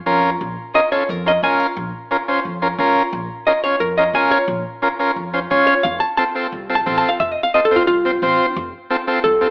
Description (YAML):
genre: latin, cumbia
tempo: 176 BPM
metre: 4/4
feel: straight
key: Bb harmonic minor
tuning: A4 = 440 Hz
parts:
  - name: combo organ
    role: accompaniment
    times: 0.1-9.5 s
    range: C4 to Db5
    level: -18 LUFS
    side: equal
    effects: spring reverb
  - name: upright bass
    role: bass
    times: 0.1-9.5 s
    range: F1 to F2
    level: -29 LUFS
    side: equal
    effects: none
  - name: hollow-body jazz guitar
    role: melody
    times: 0.8-9.5 s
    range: F4 to A5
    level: -16 LUFS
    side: equal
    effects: none
room: moderate large studio reverb, RT60 1.1 s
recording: AM radio sound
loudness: -15 LUFS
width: side -37 dB against mid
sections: 0.4-9.5 A section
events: hollow-body jazz guitar solo 0.4-9.5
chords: 0.4 Bbm; 5.8 F